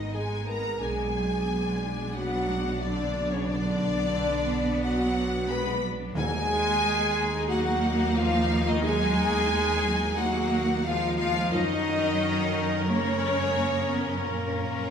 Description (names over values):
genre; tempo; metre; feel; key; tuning
cinematic; 90 BPM; 4/4; straight; unclear; A4 = 440 Hz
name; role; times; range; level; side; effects
rich symphonic violin section; melody; 0.0-14.9 s; A#4 to B5; -35 LUFS; left 3 dB; none
bright small flute group; second line; 0.0-14.9 s; A#4 to B5; -34 LUFS; left 4 dB; none
warm symphonic violin section; second line; 0.0-14.9 s; A#4 to B5; -35 LUFS; left 1 dB; none
clear symphonic viola section; accompaniment; 0.0-14.9 s; A#3 to A#4; -34 LUFS; equal; none
warm French horn section; sustained chords; 0.0-14.9 s; A#3 to B4; -30 LUFS; left 1 dB; none
warm trombone section; sustained chords; 0.0-14.9 s; A#2 to B3; -34 LUFS; right 3 dB; none
rich symphonic cello section; bass; 0.0-14.9 s; F#3 to C#4; -31 LUFS; right 2 dB; none
warm symphonic double bass section; bass; 0.0-14.9 s; G#1 to F#2; -32 LUFS; right 2 dB; none
timpani; percussion; 6.2-7.1 s; D#3; -34 LUFS; equal; none
room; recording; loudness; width
wet recital hall reverb, RT60 1.3 s; recorded in a church or concert hall; -24 LUFS; side -7 dB against mid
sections
0.0-14.9 A section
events
none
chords
0.0 G#m; 0.8 Bm; 6.2 D#m; 11.5 F#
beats
0.14 | 0.81 1.48 2.15 2.81 | 3.48 4.15 4.82 5.49 | 6.15 6.82 7.49 8.16 | 8.84 9.51 10.18 10.84 | 11.52 12.19 12.86 13.54 | 14.22